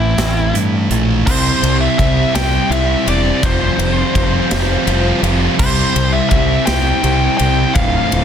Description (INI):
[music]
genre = quiet-loud alternative rock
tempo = 56 BPM (dotted quarters)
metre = 6/8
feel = straight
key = unclear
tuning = A4 = 440 Hz
[part]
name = nasal lead guitar with a parked wah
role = melody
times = 0.0-8.2 s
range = E4 to G5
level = -19 LUFS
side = left 1 dB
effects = overdrive
[part]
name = clean electric guitar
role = arpeggios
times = 0.0-1.3 s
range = A2 to E4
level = -25 LUFS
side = right 7 dB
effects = analog chorus, slapback echo
[part]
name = thick fuzz guitar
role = riff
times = 0.0-8.2 s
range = D2 to C5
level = -21 LUFS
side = left 11 dB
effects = distortion
[part]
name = thick fuzz guitar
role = riff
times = 0.0-8.2 s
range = D2 to C5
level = -21 LUFS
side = right 13 dB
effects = distortion
[part]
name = growling fingered electric bass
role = bass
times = 0.0-8.2 s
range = D1 to G2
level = -18 LUFS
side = equal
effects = overdrive
[part]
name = big rock drum kit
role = drums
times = 0.2-8.2 s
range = crash cymbal, hi-hat, kick drum, ride cymbal, snare drum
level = -20 LUFS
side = equal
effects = none
[part]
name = sludgy distorted guitar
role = riff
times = 1.3-8.2 s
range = D2 to C5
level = -21 LUFS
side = equal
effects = overdrive
[sound]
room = little or no reverb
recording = dense, heavily limited modern master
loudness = -12 LUFS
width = side -8 dB against mid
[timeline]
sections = 0.0-1.3 A section; 1.3-8.2 B section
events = lead electric guitar solo 0.0-1.3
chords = 0.0 Am; 1.3 C; 3.4 Fsus2; 5.6 C